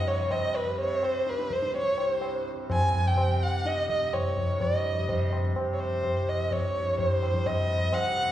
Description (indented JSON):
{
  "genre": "indian classical, Hindustani",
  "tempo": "126 BPM",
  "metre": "4/4",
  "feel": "straight",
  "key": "C raga todi",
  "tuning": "A4 = 440 Hz",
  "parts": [
    { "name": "warm violin", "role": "melody", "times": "0.0-8.3 s", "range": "B4 to Ab5", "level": "-28 LUFS", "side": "equal", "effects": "none" },
    { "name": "tanpura", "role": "drone", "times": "0.0-8.3 s", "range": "C2 to C3", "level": "-36 LUFS", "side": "right 2 dB", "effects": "none" },
    { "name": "tabla", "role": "percussion", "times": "0.3-8.1 s", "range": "none", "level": "-28 LUFS", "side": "equal", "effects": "none" }
  ],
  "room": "wet recital hall reverb, RT60 1.6 s",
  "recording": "heard from further back in the room, nothing above 10.5 kHz",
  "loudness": "-25 LUFS",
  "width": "side -12 dB against mid",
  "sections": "0.0-8.3 A section",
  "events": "none",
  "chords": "none"
}